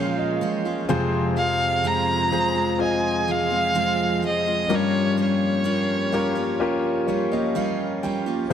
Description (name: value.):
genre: pop ballad.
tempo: 63 BPM.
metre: 4/4.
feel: straight.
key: unclear.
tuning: A4 = 441 Hz.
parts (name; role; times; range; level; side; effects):
warm violin; melody; 0.0-7.1 s; Db5 to Bb5; -24 LUFS; equal; none.
warm concert grand piano; accompaniment; 0.0-8.5 s; F2 to G5; -24 LUFS; left 4 dB; none.
tonewheel organ; sustained chords; 0.0-8.5 s; F3 to G5; -30 LUFS; equal; slow rotary speaker.
picked steel-string acoustic guitar; arpeggios; 0.0-8.5 s; F2 to F4; -27 LUFS; right 7 dB; ping-pong delay.
room: moderate lush hall reverb, RT60 2.6 s.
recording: dark, warm production.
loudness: -20 LUFS.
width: side -9 dB against mid.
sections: 0.0-8.5 A section.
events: grand piano fill 0.0-0.9, 6.6-8.5.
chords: 0.0 Bbm7; 0.9 Fm; 4.7 Gm7b5.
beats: | 0.89 1.84 2.79 3.75 | 4.70 5.65 6.60 7.55 | 8.51.